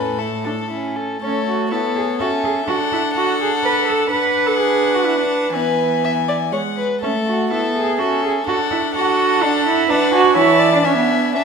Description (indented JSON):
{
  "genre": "quick classical-period movement for string quartet",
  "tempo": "124 BPM",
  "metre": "3/4",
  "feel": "rubato",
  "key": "A major",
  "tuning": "A4 = 440 Hz",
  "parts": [
    { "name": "warm violin", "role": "melody", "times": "0.0-11.4 s", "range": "A4 to A5", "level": "-24 LUFS", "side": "left 8 dB", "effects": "none" },
    { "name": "rich violin", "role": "second line", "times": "0.0-11.4 s", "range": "E4 to E5", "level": "-21 LUFS", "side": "left 2 dB", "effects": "none" },
    { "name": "warm viola", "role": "accompaniment", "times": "0.0-11.4 s", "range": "E3 to D4", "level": "-23 LUFS", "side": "right 3 dB", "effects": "none" },
    { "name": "rich cello", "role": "bass", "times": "0.0-11.4 s", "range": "A2 to B4", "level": "-19 LUFS", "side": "right 4 dB", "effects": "none" }
  ],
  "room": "moderate scoring stage reverb, RT60 1.4 s",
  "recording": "minimal, uncompressed stereo recording",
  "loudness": "-15 LUFS",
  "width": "side -6 dB against mid",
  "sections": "0.0-1.2 A section; 1.2-11.4 B section",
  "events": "none",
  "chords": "0.0 A; 2.2 A/C#; 2.7 D; 5.5 E; 7.0 A5; 8.0 A/C#; 8.5 D; 9.9 Bm/D; 10.4 A/E; 10.8 E7"
}